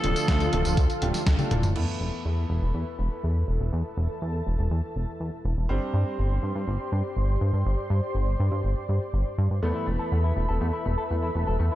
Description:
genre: italo disco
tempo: 122 BPM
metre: 4/4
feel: straight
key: unclear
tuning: A4 = 440 Hz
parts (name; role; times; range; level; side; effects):
- raspy alto saxophone; melody; 0.0-1.2 s; A4; -31 LUFS; left 1 dB; ping-pong delay
- lush unison pad; sustained chords; 0.0-11.8 s; D3 to C6; -33 LUFS; equal; chorus
- clear grand piano; stabs; 0.0-11.8 s; D3 to C5; -34 LUFS; right 1 dB; none
- chorused synth bass; bass; 0.0-11.7 s; D1 to G2; -25 LUFS; equal; tube saturation
- clean 12-bit digital drum machine; drums; 0.0-1.9 s; crash cymbal, hi-hat, snare drum, tambourine, toms; -29 LUFS; equal; none
- electronic kick drum; drums; 0.3-1.4 s; none; -24 LUFS; equal; none
- electric guitar with an envelope filter; arpeggios; 9.6-11.8 s; A3 to A4; -34 LUFS; left 3 dB; digital delay
room: light reverb, digital ambience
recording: dark, warm production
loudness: -24 LUFS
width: side -14 dB against mid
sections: 0.0-1.8 A section; 1.8-11.8 B section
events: drum fill 1.3-1.8; filter sweep on analog synth pad 1.8-11.8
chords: 0.0 Dm; 1.8 Esus4; 5.7 Gsus4; 9.6 Esus4

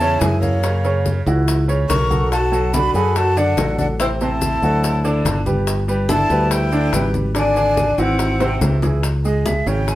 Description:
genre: Afro-Cuban jazz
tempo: 143 BPM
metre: 4/4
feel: straight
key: unclear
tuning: A4 = 443 Hz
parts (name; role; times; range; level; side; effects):
- breathy jazz flute; melody; 0.0-10.0 s; C#5 to C#6; -23 LUFS; right 1 dB; none
- breathy tenor saxophone; second line; 0.0-8.6 s; A#3 to A#4; -23 LUFS; left 3 dB; none
- clear upright piano; accompaniment; 0.0-10.0 s; C3 to D5; -22 LUFS; right 2 dB; none
- fingered electric bass; bass; 0.0-10.0 s; G1 to F#2; -20 LUFS; equal; none
- bongos; percussion; 0.0-10.0 s; none; -28 LUFS; left 4 dB; none
- congas; percussion; 0.0-10.0 s; none; -26 LUFS; left 1 dB; none
- maracas; percussion; 0.0-10.0 s; none; -33 LUFS; left 5 dB; none
room: moderate studio reverb, RT60 0.8 s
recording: band playing live in one room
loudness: -15 LUFS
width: side -15 dB against mid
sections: 0.0-9.0 A section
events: drum fill 8.4-9.0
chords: 0.0 Amaj7; 0.6 F#7; 2.3 Bm7; 4.0 Am; 4.8 D; 5.7 G6; 7.4 G#7#11; 8.2 G#aug7; 9.0 C#m

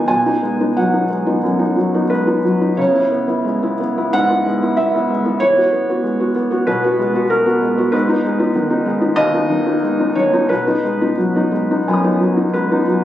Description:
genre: neoclassical minimalist piano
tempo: 86-97 BPM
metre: 4/4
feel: rubato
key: unclear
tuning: A4 = 435 Hz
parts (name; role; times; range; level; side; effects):
- felt-muted upright piano; solo; 0.0-13.0 s; D#2 to D#6; -14 LUFS; equal; none
room: light reverb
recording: recorded on a phone in the room, club reverb, compression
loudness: -14 LUFS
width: side -12 dB against mid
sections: 0.0-13.0 A section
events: none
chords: 0.1 B6; 2.8 C#m7; 5.4 Eadd9 (rootless); 7.9 G#m; 10.5 B6

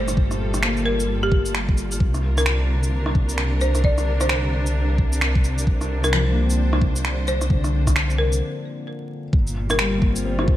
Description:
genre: future garage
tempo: 131 BPM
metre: 4/4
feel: swing 62% on 16ths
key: unclear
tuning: A4 = 440 Hz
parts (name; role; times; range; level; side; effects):
- folk marimba with hard mallets; melody; 0.0-9.9 s; G4 to D5; -27 LUFS; left 1 dB; digital delay
- felt-muted upright piano; accompaniment; 0.0-10.6 s; D3 to F4; -29 LUFS; left 2 dB; vintage 12-bit sampler grit, sidechain pumping, digital delay
- bright studio string section; sustained chords; 0.0-10.6 s; Bb2 to C5; -29 LUFS; right 1 dB; vintage 12-bit sampler grit, sidechain pumping
- dark detuned saw bass; bass; 0.0-10.6 s; G1 to C2; -22 LUFS; equal; sidechain pumping
- electronic rim click, shaker and finger snaps; drums; 0.1-10.5 s; none; -26 LUFS; equal; gated reverb
- electronic kick drum; drums; 0.2-10.6 s; none; -19 LUFS; equal; none
room: light reverb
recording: bright 1980s-style digital production, vinyl crackle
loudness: -18 LUFS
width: side -13 dB against mid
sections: 0.0-9.3 A section; 9.3-10.6 B section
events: break 8.4-9.3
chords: 0.0 Gm9; 2.0 Csus2; 9.3 Gm7

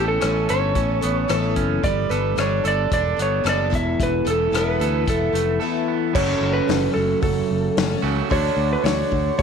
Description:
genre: folk rock and heartland rock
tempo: 111 BPM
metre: 4/4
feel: straight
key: unclear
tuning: A4 = 443 Hz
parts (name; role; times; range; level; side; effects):
- electric slide guitar; melody; 0.0-9.4 s; A4 to E5; -23 LUFS; right 1 dB; none
- picked plugged-in twelve-string acoustic guitar; accompaniment; 0.0-9.4 s; E2 to A4; -27 LUFS; left 11 dB; none
- electric guitar at the edge of break-up; riff; 0.0-9.4 s; E2 to A4; -25 LUFS; right 12 dB; none
- fingered electric bass; bass; 0.0-9.4 s; E1 to D2; -24 LUFS; equal; none
- natural country drum kit; drums; 0.2-9.4 s; crash cymbal, hi-hat, kick drum, rim click, snare drum; -26 LUFS; left 4 dB; none
- dark upright piano; accompaniment; 6.1-9.4 s; C#4 to A4; -32 LUFS; right 10 dB; none
room: light reverb, small room ambience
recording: 1960s-style stereo with parts hard left and right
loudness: -18 LUFS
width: side -6 dB against mid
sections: 0.0-6.1 A section; 6.1-9.4 B section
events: break 5.6-6.1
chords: 0.0 Aadd9; 1.8 Gadd9; 3.7 Esus4; 6.1 F#m; 8.3 D

